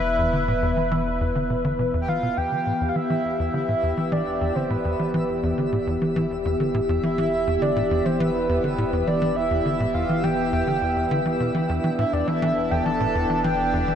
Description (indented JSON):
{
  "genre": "ambient, sequencer-driven space music",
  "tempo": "103 BPM",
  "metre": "4/4",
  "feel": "straight",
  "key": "E minor",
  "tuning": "A4 = 440 Hz",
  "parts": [
    { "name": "breathy flute-like synth lead", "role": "melody", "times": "0.0-13.9 s", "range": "B4 to A5", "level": "-26 LUFS", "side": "right 1 dB", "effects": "analog chorus, tape echo" },
    { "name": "sweeping resonant pad", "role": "sustained chords", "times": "0.0-13.9 s", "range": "E3 to B4", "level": "-26 LUFS", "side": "left 1 dB", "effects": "wide subtle chorus" },
    { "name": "warm sub bass", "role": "bass", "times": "0.0-13.9 s", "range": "E1", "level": "-36 LUFS", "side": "equal", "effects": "none" },
    { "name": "tight sequencer bass", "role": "riff", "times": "0.2-13.9 s", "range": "E2 to E3", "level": "-26 LUFS", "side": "equal", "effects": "wide subtle chorus, tape echo" },
    { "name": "twinkling granular texture", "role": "texture", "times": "2.9-13.9 s", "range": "E4 to E5", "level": "-34 LUFS", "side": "right 1 dB", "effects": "built-in reverb" }
  ],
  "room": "wet huge ambient reverb, RT60 9.4 s",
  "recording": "nothing above 10.7 kHz",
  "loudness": "-21 LUFS",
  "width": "side -8 dB against mid",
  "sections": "0.0-2.4 A section; 2.4-13.9 B section",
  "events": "fade-in on sub bass 2.4-13.9",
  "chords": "0.0 E5; 2.4 Em",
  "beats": "| 0.04 0.62 1.21 1.79 | 2.37 2.96 3.54 4.12 | 4.70 5.29 5.87 6.45 | 7.03 7.62 8.20 8.78 | 9.36 9.95 10.53 11.11 | 11.69 12.28 12.86 13.44"
}